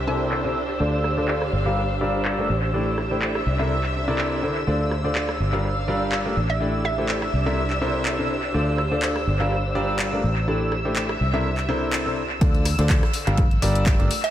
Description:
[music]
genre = piano house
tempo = 124 BPM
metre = 4/4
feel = swing 55% on 16ths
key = D minor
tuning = A4 = 440 Hz
[part]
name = hollow square pluck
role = melody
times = 0.0-0.4, 6.5-7.0, 14.2-14.3 s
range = E5 to A5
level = -30 LUFS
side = right 4 dB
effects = chorus, analog delay
[part]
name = analog string pad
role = sustained chords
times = 0.0-14.3 s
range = E6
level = -30 LUFS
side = equal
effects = ensemble chorus, sidechain pumping
[part]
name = fingered electric bass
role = bass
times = 0.0-14.1 s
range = G1 to D2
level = -25 LUFS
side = equal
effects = sidechain pumping, low-pass filter
[part]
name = warm studio string section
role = texture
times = 0.0-12.4 s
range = D4 to F5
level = -29 LUFS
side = right 1 dB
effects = sidechain pumping
[part]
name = clear grand piano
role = riff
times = 0.1-14.1 s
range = C3 to F5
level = -26 LUFS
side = left 1 dB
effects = sidechain pumping, low-pass filter, analog delay
[part]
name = house drum kit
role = drums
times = 0.3-14.3 s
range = handclaps, hi-hat, rim click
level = -30 LUFS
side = equal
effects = low-pass filter on snare, low-pass filter on hats, low-pass filter on room, analog delay
[part]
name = electronic kick drum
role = drums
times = 12.4-14.0 s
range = none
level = -20 LUFS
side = equal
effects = none
[part]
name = open jazz drum kit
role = drums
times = 12.4-14.3 s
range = ride cymbal, snare drum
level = -37 LUFS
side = right 4 dB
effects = sidechain pumping on cymbals, high-pass filter on cymbals, high-pass filter on snare, high-pass filter on room, analog delay
[sound]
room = moderate plate reverb, RT60 2.6 s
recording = echo-heavy mix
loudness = -20 LUFS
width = side -11 dB against mid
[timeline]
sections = 0.0-12.4 A section; 12.4-14.3 B section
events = filter sweep on drum 0.0-12.4; filter sweep on grand piano 0.0-12.4; drop 12.4-14.3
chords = 0.0 C13; 0.8 Dm7; 1.5 Gm7; 2.5 A7sus4; 3.5 C13; 4.7 Dm7; 5.4 Gm7; 6.4 A7sus4; 7.3 C13; 8.5 Dm7; 9.3 Gm7; 10.2 A7sus4; 11.2 C13; 12.4 Dm7; 13.1 Gm7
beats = 0.32 | 0.80 1.28 1.77 2.25 | 2.74 3.22 3.70 4.19 | 4.67 5.16 5.64 6.12 | 6.61 7.09 7.58 8.06 | 8.54 9.03 9.51 9.99 | 10.48 10.96 11.45 11.93 | 12.41 12.90 13.38 13.87

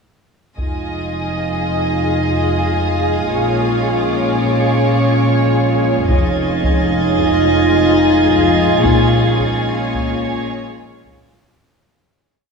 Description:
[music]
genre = cinematic, suspense film score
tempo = 109 BPM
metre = 5/4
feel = straight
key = F minor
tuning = A4 = 440 Hz
[part]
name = warm studio violin section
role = melody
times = 0.6-11.3 s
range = Db5 to Eb5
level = -23 LUFS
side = right 1 dB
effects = none
[part]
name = dark symphonic violin section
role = second line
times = 0.6-11.4 s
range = Ab4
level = -25 LUFS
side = equal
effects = none
[part]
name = dark studio viola section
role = accompaniment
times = 0.6-11.4 s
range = F4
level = -22 LUFS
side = left 2 dB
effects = none
[part]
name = ethereal airy pad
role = sustained chords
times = 1.1-11.6 s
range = Ab4 to F5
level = -23 LUFS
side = equal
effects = ensemble chorus, built-in reverb
[part]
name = mellow French horn section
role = sustained chords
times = 0.6-11.3 s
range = Ab3 to Eb4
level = -20 LUFS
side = right 1 dB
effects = none
[part]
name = dark studio double bass section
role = bass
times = 0.6-11.4 s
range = F1 to Bb1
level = -21 LUFS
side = equal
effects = none
[part]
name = warm studio cello section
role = bass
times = 0.6-11.4 s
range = F2 to Bb2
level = -21 LUFS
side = equal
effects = none
[part]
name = taiko ensemble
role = drums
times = 0.6-1.6, 6.1-11.6 s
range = none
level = -21 LUFS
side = left 1 dB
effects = none
[part]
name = dark studio violin section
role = texture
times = 0.6-11.3 s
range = Ab5 to A6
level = -27 LUFS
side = right 1 dB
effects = none
[sound]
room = wet huge ambient reverb, RT60 8.1 s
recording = in a vast, echoing space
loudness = -13 LUFS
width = side -4 dB against mid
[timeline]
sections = 0.6-11.6 A section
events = fade-out 8.8-11.6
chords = 0.6 Fm7; 3.3 Bbm7; 6.1 Fm7; 8.8 Bbm7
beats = | 0.58 1.13 1.69 2.23 2.79 | 3.34 3.89 4.44 4.99 5.54 | 6.09 6.64 7.19 7.74 8.29 | 8.84 9.39 9.94 10.49 11.04

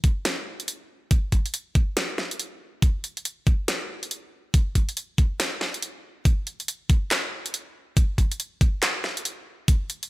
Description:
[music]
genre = deep dubstep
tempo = 140 BPM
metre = 4/4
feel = swing 62% on 16ths, half-time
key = none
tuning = none
[part]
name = dubstep drum kit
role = drums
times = 0.0-10.1 s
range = handclaps, hi-hat, snare drum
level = -26 LUFS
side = equal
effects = high-pass filter on snare, high-pass filter on toms, high-pass filter on hats
[part]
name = electronic kick drum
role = drums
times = 0.0-9.8 s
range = none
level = -20 LUFS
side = equal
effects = none
[sound]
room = little or no reverb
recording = none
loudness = -23 LUFS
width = side -18 dB against mid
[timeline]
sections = 0.0-10.1 A section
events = build-up 0.0-10.1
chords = none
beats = 0.25 0.68 | 1.11 1.54 1.97 2.40 | 2.83 3.25 3.68 4.11 | 4.54 4.97 5.40 5.83 | 6.25 6.68 7.11 7.54 | 7.97 8.40 8.82 9.25 | 9.68

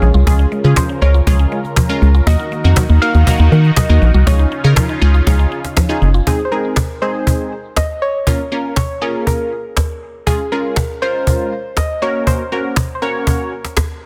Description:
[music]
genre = dance-pop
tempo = 120 BPM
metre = 4/4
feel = straight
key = Db major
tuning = A4 = 440 Hz
[part]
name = soft round pluck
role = melody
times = 0.0-13.5 s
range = Ab4 to F5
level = -24 LUFS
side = equal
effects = chorus, delay
[part]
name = funky polysynth comp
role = accompaniment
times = 0.0-13.5 s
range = Ab3 to Db5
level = -24 LUFS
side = equal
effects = chorus
[part]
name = filtered supersaw swell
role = sustained chords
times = 0.0-6.2 s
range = Db3 to Bb4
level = -27 LUFS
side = equal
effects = none
[part]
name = mallet-like synth pluck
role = arpeggios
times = 0.0-6.2 s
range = F3 to Gb4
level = -28 LUFS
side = equal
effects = chorus, delay
[part]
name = organ-like FM bass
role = bass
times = 0.0-6.2 s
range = Gb1 to Eb3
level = -12 LUFS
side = equal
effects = none
[part]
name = cajon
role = drums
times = 0.0-13.9 s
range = none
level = -19 LUFS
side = equal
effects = none
[sound]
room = little or no reverb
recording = dense, heavily limited modern master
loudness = -15 LUFS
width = mono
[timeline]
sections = 0.0-6.3 A section; 6.3-14.1 B section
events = none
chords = 0.0 Db; 2.3 Ebm; 4.3 Dbadd9; 6.3 Ab; 8.3 Bbm; 10.3 Db; 12.0 Gb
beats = | 0.27 0.77 1.27 1.77 | 2.27 2.77 3.27 3.77 | 4.27 4.77 5.27 5.77 | 6.27 6.77 7.27 7.77 | 8.27 8.77 9.27 9.77 | 10.27 10.77 11.27 11.77 | 12.27 12.77 13.27 13.77

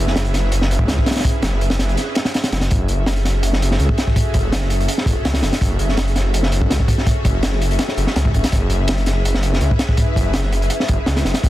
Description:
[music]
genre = drum and bass, jungle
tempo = 165 BPM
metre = 4/4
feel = straight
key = F# minor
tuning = A4 = 440 Hz
[part]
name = detuned saw bass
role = bass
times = 0.0-11.5 s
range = F#1 to C#2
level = -19 LUFS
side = equal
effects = tube saturation
[part]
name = crunchy breakbeat drum kit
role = drums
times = 0.1-11.5 s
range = hi-hat, kick drum, snare drum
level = -18 LUFS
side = equal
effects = none
[sound]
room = studio ambience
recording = dense, heavily limited modern master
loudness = -15 LUFS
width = side -15 dB against mid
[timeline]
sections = 0.0-11.5 A section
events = none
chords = none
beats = 0.16 0.52 0.89 | 1.25 1.61 1.98 2.34 | 2.71 3.07 3.43 3.80 | 4.16 4.52 4.89 5.25 | 5.62 5.98 6.34 6.71 | 7.07 7.43 7.80 8.16 | 8.52 8.89 9.25 9.62 | 9.98 10.34 10.71 11.07 | 11.43

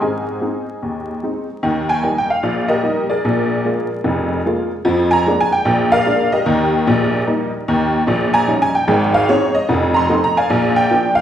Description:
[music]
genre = jazz, stride piano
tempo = 149 BPM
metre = 4/4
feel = swing 63% on 8ths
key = Eb major, Ab major from 8.1 s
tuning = A4 = 440 Hz
[part]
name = honky-tonk upright piano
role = solo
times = 0.0-11.2 s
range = F1 to C6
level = -14 LUFS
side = equal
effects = none
[sound]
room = wet large studio reverb, RT60 1.3 s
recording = band playing live in one room, vinyl crackle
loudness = -14 LUFS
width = side -10 dB against mid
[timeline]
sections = 0.0-1.6 A section; 1.6-11.2 B section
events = none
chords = 0.0 Ab; 1.6 Eb; 3.2 Bb7; 4.8 Bb7/F; 6.5 Eb; 8.1 Eb7/Bb; 8.9 Ab; 9.7 F7; 10.5 Bb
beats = | 0.00 0.41 0.81 1.22 | 1.62 2.02 2.43 2.83 | 3.23 3.64 4.04 4.44 | 4.85 5.25 5.66 6.06 | 6.46 6.87 7.27 7.67 | 8.08 8.48 8.89 9.29 | 9.70 10.10 10.50 10.91

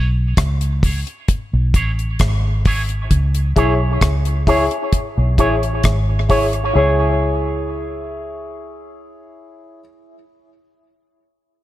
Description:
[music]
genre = dub reggae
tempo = 66 BPM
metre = 4/4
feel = straight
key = C# minor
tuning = A4 = 441 Hz
[part]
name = electric guitar with an envelope filter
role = accompaniment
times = 0.0-10.3 s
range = E4 to C#5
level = -23 LUFS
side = right 3 dB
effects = spring reverb, high-pass filter, tape echo
[part]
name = warm grand piano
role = stabs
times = 0.0-9.8 s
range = E4 to C#5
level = -22 LUFS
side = left 4 dB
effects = high-pass filter, tape echo
[part]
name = vintage muted fingered electric bass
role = bass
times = 0.0-9.8 s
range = G#1 to C#2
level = -18 LUFS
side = equal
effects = none
[part]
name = deep reggae drum kit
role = drums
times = 0.4-6.7 s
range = hi-hat, kick drum, rim click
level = -18 LUFS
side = equal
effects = none
[sound]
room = light reverb, studio ambience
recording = echo-heavy mix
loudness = -15 LUFS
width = side -14 dB against mid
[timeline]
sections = 0.0-6.7 A section; 6.7-10.4 B section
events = none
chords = 0.0 C#m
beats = 0.38 1.29 2.20 | 3.11 4.02 4.93 5.84 | 6.75 7.66 8.57 9.48

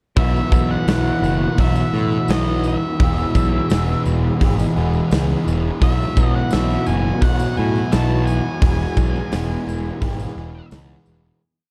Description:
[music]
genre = rock, shoegaze and dream pop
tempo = 85 BPM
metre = 4/4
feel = straight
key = unclear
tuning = A4 = 436 Hz
[part]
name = octave-fuzz lead guitar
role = melody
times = 0.2-10.7 s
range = D#5 to A5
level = -31 LUFS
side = equal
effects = distortion, analog delay
[part]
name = soft additive organ-like pad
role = sustained chords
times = 1.1-11.4 s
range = E3 to G#4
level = -32 LUFS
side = equal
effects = none
[part]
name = crunchy overdriven guitar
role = riff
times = 0.2-11.4 s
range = E2 to G#4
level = -26 LUFS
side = equal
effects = reverse reverb
[part]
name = overdriven electric guitar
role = riff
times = 0.2-11.4 s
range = E2 to G#4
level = -28 LUFS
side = equal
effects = subtle chorus
[part]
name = fuzz picked electric bass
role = bass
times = 0.2-11.3 s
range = E1 to A2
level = -23 LUFS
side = equal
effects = overdrive
[part]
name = big rock drum kit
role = drums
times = 0.2-10.9 s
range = hi-hat, kick drum, snare drum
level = -24 LUFS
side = equal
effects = none
[part]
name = tambourine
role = percussion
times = 0.4-11.3 s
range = none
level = -48 LUFS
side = equal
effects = none
[sound]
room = moderate small room ambience, RT60 0.5 s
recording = dark, warm production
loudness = -19 LUFS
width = mono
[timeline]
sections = 0.2-11.4 verse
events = fade-out 8.6-11.4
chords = 0.2 Bsus4; 3.0 E; 5.8 Bsus4; 8.6 E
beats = | 0.17 0.88 1.58 2.29 | 2.99 3.70 4.40 5.11 | 5.81 6.52 7.22 7.92 | 8.62 9.33 10.03 10.73

